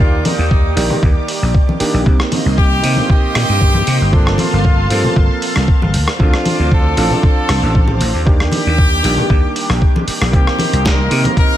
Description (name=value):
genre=nu-disco, nu disco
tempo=116 BPM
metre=4/4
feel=swing 53% on 16ths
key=C dorian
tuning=A4 = 444 Hz
part: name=brilliant trumpet section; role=melody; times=0.0-11.6 s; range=D4 to Bb4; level=-21 LUFS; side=left 2 dB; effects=tape echo
part: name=warm electric grand piano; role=accompaniment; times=0.0-11.6 s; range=Eb3 to D5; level=-20 LUFS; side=right 3 dB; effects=ping-pong delay
part: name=string machine, full ensemble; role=sustained chords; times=0.0-11.6 s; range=Bb3 to D6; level=-24 LUFS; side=equal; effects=phaser, ensemble chorus, sidechain pumping
part: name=vintage slap bass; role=bass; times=0.0-11.2 s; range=G1 to C3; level=-16 LUFS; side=equal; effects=none
part: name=dusty soul sampler-style drum kit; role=drums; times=0.3-11.5 s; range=hi-hat, rim click, snare drum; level=-22 LUFS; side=equal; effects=none
part: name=congas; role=percussion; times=0.3-11.4 s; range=none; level=-21 LUFS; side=left 2 dB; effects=none
part: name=electronic kick drum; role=drums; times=0.5-11.5 s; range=none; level=-12 LUFS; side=equal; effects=none
room=light reverb, digital ambience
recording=none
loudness=-11 LUFS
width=side -12 dB against mid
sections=0.0-11.6 A section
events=none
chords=0.0 Ebmaj7; 2.1 Cm7; 4.1 Gm11; 5.9 Dm7; 8.3 Ebmaj7; 10.3 Cm7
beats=0.51 1.03 1.54 | 2.06 2.58 3.10 3.61 | 4.13 4.65 5.17 5.68 | 6.20 6.72 7.23 7.75 | 8.27 8.79 9.30 9.82 | 10.34 10.85 11.37